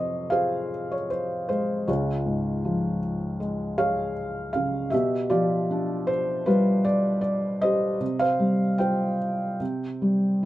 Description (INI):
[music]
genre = classical, lyrical solo piano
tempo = 78 BPM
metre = 4/4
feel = rubato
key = F minor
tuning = A4 = 439 Hz
[part]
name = felt-muted upright piano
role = solo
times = 0.0-10.5 s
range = Db2 to G5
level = -23 LUFS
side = equal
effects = none
[sound]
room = light reverb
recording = minimal, uncompressed stereo recording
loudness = -23 LUFS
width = side -15 dB against mid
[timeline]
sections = 0.0-10.5 A section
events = none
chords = 0.0 Fm; 1.9 Db; 4.9 G7/B; 8.0 Csus4; 9.6 C5